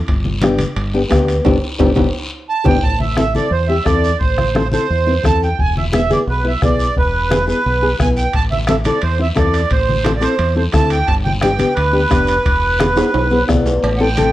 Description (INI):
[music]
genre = latin, cumbia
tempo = 175 BPM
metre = 4/4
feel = straight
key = A minor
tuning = A4 = 440 Hz
[part]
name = deep dub fingered electric bass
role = bass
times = 0.1-14.3 s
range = E1 to E2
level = -19 LUFS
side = equal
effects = none
[part]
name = bombo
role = percussion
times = 0.1-13.7 s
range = none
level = -19 LUFS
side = equal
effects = none
[part]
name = congas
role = percussion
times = 0.1-14.3 s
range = none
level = -23 LUFS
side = left 1 dB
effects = none
[part]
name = guiro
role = percussion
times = 0.1-14.3 s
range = none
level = -32 LUFS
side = left 2 dB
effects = none
[part]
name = timbales and cowbell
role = percussion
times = 0.1-2.7, 8.3-14.3 s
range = none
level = -25 LUFS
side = right 3 dB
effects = none
[part]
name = nylon-string guitar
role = accompaniment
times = 0.4-14.3 s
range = B3 to D5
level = -18 LUFS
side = left 2 dB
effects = none
[part]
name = accordion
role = melody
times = 2.5-14.3 s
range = B4 to A5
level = -18 LUFS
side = right 3 dB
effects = light tremolo tuning
[sound]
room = moderate studio reverb, RT60 0.8 s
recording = worn, warbling old tape, cassette tape, warbly pitch drift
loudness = -13 LUFS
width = side -14 dB against mid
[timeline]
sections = 0.0-2.8 A section; 2.8-13.8 B section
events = band accent 1.5-2.8; drum fill 1.8-2.8, 13.0-13.8; nylon-string guitar fill 13.1-13.8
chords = 0.1 G; 2.8 Am; 5.6 E; 8.3 Am; 11.1 G; 12.5 E7